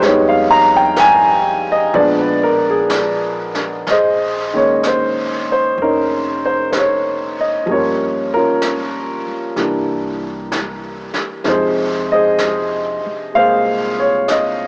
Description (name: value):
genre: jazz ballad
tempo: 63 BPM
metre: 4/4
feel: swing 68% on 8ths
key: Bb minor from 3.9 s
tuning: A4 = 440 Hz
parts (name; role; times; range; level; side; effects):
- warm baby grand piano; accompaniment; 0.0-14.7 s; C3 to Bb5; -13 LUFS; equal; cassette tape
- upright bass; bass; 0.0-14.7 s; F1 to F2; -34 LUFS; equal; none
- vintage brush drum kit; drums; 0.0-14.7 s; brushed snare drum, hi-hat, snare drum; -25 LUFS; equal; cassette tape
room: moderate spring reverb, RT60 3.0 s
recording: home recording on cassette, small speaker sound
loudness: -13 LUFS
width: side -40 dB against mid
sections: 0.0-3.9 A section; 3.9-14.7 B section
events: none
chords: 0.0 Fm7b5; 1.9 Bb7b9; 3.9 Bbm11; 7.7 Gm7b5; 9.6 C7; 11.5 Fm7